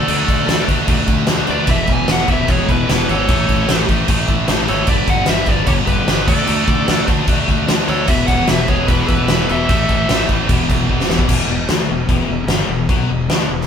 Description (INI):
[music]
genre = hard rock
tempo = 150 BPM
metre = 4/4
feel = straight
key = unclear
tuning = A4 = 440 Hz
[part]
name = dark smooth lead guitar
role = melody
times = 0.0-10.3 s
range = G#4 to G#5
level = -21 LUFS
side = left 1 dB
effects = overdrive
[part]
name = nasal lead guitar with a parked wah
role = second line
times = 0.0-10.2 s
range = E4 to E5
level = -26 LUFS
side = right 2 dB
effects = overdrive
[part]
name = crunchy overdriven guitar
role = riff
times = 0.0-13.7 s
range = E2 to D4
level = -21 LUFS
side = left 6 dB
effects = none
[part]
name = scooped high-gain guitar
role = riff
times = 0.0-11.3 s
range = E2 to D4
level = -22 LUFS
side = right 7 dB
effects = distortion
[part]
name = fuzz fingered electric bass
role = bass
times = 0.0-13.7 s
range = E1 to D2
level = -21 LUFS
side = equal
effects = overdrive
[part]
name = huge arena drum kit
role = drums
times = 0.1-13.7 s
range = crash cymbal, kick drum, snare drum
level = -16 LUFS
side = equal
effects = none
[sound]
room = light reverb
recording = band playing live in one room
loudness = -13 LUFS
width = side -8 dB against mid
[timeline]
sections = 0.0-11.3 A section; 11.3-13.7 B section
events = drum fill 10.9-11.3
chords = 0.0 D5; 1.7 E; 3.3 A; 4.9 G; 6.3 D5; 8.1 E5; 9.7 A5; 10.5 E5